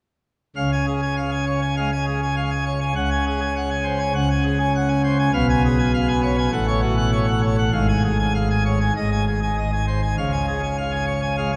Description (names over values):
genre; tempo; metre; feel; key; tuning
classical, organ toccata; 100 BPM; 4/4; straight; Db major; A4 = 442 Hz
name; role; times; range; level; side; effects
pipe organ, plenum; solo; 0.6-11.6 s; Ab1 to Ab5; -21 LUFS; equal; none
room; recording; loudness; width
wet cathedral reverb, RT60 5.7 s; recorded in a church or concert hall; -21 LUFS; mono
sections
0.6-11.6 A section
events
none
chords
0.6 Db; 3.0 Ab7/Db; 5.3 Db7/Cb; 6.5 Gbm/A; 7.7 Db/Ab; 8.9 Ab; 10.2 Db